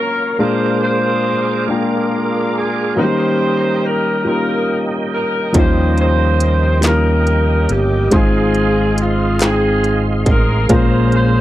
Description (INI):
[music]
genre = slow gospel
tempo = 47 BPM (dotted quarters)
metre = 6/8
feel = straight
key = unclear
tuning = A4 = 440 Hz
[part]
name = mellow saxophone section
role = melody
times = 0.0-11.4 s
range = C4 to C5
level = -18 LUFS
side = equal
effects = none
[part]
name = warm concert grand piano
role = accompaniment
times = 0.0-11.4 s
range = Ab2 to G5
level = -17 LUFS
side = left 2 dB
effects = none
[part]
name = tonewheel organ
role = sustained chords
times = 0.0-11.4 s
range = Db4 to D6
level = -25 LUFS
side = right 4 dB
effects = fast rotary speaker, chorus vibrato
[part]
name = fingered electric bass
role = bass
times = 5.5-11.4 s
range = G1 to Eb2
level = -16 LUFS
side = right 1 dB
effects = none
[part]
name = industrial drum kit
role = drums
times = 5.5-11.3 s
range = hi-hat, kick drum, snare drum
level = -17 LUFS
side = right 1 dB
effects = distortion
[part]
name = group handclap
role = percussion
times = 6.8-9.8 s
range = none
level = -27 LUFS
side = left 4 dB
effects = none
[sound]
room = studio ambience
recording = dry, close 1970s-style studio recording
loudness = -13 LUFS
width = side -14 dB against mid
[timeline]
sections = 0.0-11.4 A section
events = none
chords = 0.4 Bb7; 3.0 Eb7; 8.1 Ab6; 10.7 Bbm7